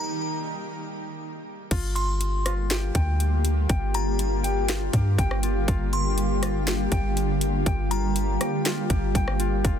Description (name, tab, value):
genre	hip hop, atmospheric cloud-rap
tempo	121 BPM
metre	4/4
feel	half-time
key	unclear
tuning	A4 = 443 Hz
part	delicate synth tine bell	melody	0.0-8.6 s	Bb5 to C6	-34 LUFS	equal	chorus, phaser, tremolo, digital delay
part	concert harp	arpeggios	0.0-9.8 s	Eb4 to G5	-34 LUFS	left 5 dB	digital delay
part	shimmering ambient pad	sustained chords	2.4-9.8 s	D3 to G4	-28 LUFS	equal	chorus, built-in reverb, sidechain pumping
part	soft 808-style bass	bass	1.7-9.8 s	F1 to G2	-25 LUFS	equal	none
part	trap drum kit	drums	1.7-9.8 s	crash cymbal, hi-hat, kick drum, rim click, snare drum	-26 LUFS	equal	none
room	little or no reverb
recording	dense, heavily limited modern master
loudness	-22 LUFS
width	side -8 dB against mid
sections	0.0-1.7 A section; 1.7-9.8 B section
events	stop 0.0-1.7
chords	0.0 Eb; 1.7 Gm7